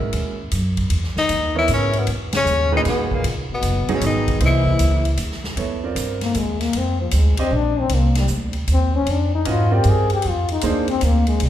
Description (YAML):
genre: modal jazz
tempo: 154 BPM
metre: 3/4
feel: swing 66% on 8ths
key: C# dorian, F dorian from 5.6 s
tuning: A4 = 440 Hz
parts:
  - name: warm grand piano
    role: accompaniment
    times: 0.0-10.9 s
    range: A#2 to D#5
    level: -26 LUFS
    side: right 6 dB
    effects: none
  - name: upright bass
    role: bass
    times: 0.0-11.5 s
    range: F#1 to G#2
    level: -20 LUFS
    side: right 1 dB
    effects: none
  - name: swinging big-band drum kit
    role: drums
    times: 0.1-11.5 s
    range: hi-hat, kick drum, ride cymbal, snare drum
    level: -29 LUFS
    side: equal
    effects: none
  - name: breathy tenor saxophone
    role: melody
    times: 1.2-5.2 s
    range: A#3 to E4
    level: -22 LUFS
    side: left 3 dB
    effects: none
  - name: mellow trombone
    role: second line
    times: 1.2-11.5 s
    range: A#2 to Ab4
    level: -24 LUFS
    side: left 5 dB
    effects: none
room: wet recital hall reverb, RT60 1.7 s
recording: recorded in a church or concert hall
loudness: -17 LUFS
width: side -11 dB against mid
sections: 0.0-5.6 A section; 5.6-11.5 B section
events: band accent 2.3; trombone solo 5.6-11.5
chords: 0.0 C#m69; 4.4 C7alt; 5.6 Fsus2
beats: 0.13 0.52 | 0.91 1.30 1.69 | 2.08 2.46 2.85 | 3.24 3.63 4.02 | 4.41 4.80 5.18 | 5.57 5.96 6.35 | 6.74 7.13 7.52 | 7.91 8.30 8.69 | 9.08 9.46 9.86 | 10.24 10.63 11.02 | 11.41